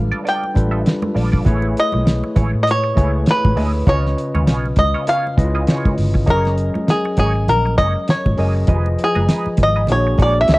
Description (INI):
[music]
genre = lush 1970s-style soul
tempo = 100 BPM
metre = 4/4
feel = swing 58% on 16ths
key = F# major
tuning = A4 = 440 Hz
[part]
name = bluegrass banjo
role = melody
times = 0.0-10.6 s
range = G#4 to G5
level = -18 LUFS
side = equal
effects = cassette tape
[part]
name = overdriven tine electric piano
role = accompaniment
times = 0.0-10.6 s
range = C#3 to D#5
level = -23 LUFS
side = left 1 dB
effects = none
[part]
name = vintage muted fingered electric bass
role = bass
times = 0.0-10.6 s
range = F1 to A2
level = -18 LUFS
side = equal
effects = none
[part]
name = semi-hollow electric guitar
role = riff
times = 0.1-10.6 s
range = A#3 to E5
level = -28 LUFS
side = right 3 dB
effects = wah
[part]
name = cloth-damped thuddy drum kit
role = drums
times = 0.3-10.6 s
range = hi-hat, kick drum, snare drum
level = -17 LUFS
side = equal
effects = cassette tape
[part]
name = congas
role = percussion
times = 0.4-10.3 s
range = none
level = -28 LUFS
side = right 2 dB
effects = none
[sound]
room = small room ambience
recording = home recording on cassette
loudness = -14 LUFS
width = side -20 dB against mid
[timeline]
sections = 0.0-6.3 A section; 6.3-10.6 B section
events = five-string banjo solo 6.3-10.6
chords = 0.0 G9; 1.5 Amaj9; 3.9 C#7; 6.3 F#69; 8.7 Fm7b5; 9.9 A#7alt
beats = 0.26 0.86 | 1.46 2.07 2.67 3.27 | 3.87 4.47 5.08 5.68 | 6.28 6.88 7.48 8.09 | 8.69 9.29 9.89 10.49